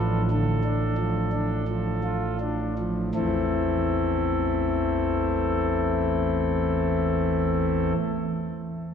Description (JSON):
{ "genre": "classical, chorale-style piece for pipe organ", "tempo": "41 BPM", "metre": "4/4", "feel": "rubato", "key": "A minor", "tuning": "A4 = 442 Hz", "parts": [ { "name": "pipe organ, principal", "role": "solo", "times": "0.0-7.9 s", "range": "A1 to A4", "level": "-23 LUFS", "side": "equal", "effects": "none" } ], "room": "wet church reverb, RT60 3.1 s", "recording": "none", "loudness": "-23 LUFS", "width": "side -7 dB against mid", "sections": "0.0-3.2 A section; 3.2-8.9 B section", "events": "slowing down 0.0-3.2", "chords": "0.0 Dm/A; 3.2 Am" }